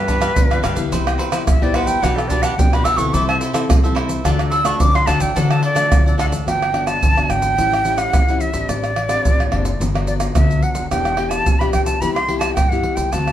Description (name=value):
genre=samba and choro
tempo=108 BPM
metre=4/4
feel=straight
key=G major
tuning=A4 = 436 Hz
part: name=jazz flute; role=melody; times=0.0-13.3 s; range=A4 to E6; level=-20 LUFS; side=right 1 dB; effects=none
part: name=cavaquinho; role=accompaniment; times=0.0-6.5 s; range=D4 to G5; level=-26 LUFS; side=right 3 dB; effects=none
part: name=nylon-string guitar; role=accompaniment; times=0.0-13.3 s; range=G2 to A4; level=-24 LUFS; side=left 4 dB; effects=none
part: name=upright bass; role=bass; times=0.0-13.3 s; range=E1 to D3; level=-23 LUFS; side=left 1 dB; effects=none
part: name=maracas, surdo, pandeiro and tamborim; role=percussion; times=0.1-13.3 s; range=none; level=-18 LUFS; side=right 1 dB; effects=none
room=wet studio reverb, RT60 0.7 s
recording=band playing live in one room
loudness=-15 LUFS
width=side -11 dB against mid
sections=0.0-6.5 A section; 6.5-13.3 B section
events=flute solo 0.0-6.5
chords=0.0 G7; 0.9 Cmaj7; 2.0 Gmaj7/B; 3.1 Am/C; 4.3 D; 6.5 Gmaj7; 7.6 A7; 8.7 D7sus4/A; 9.8 Gmaj7; 10.9 Em7; 12.0 Cmaj7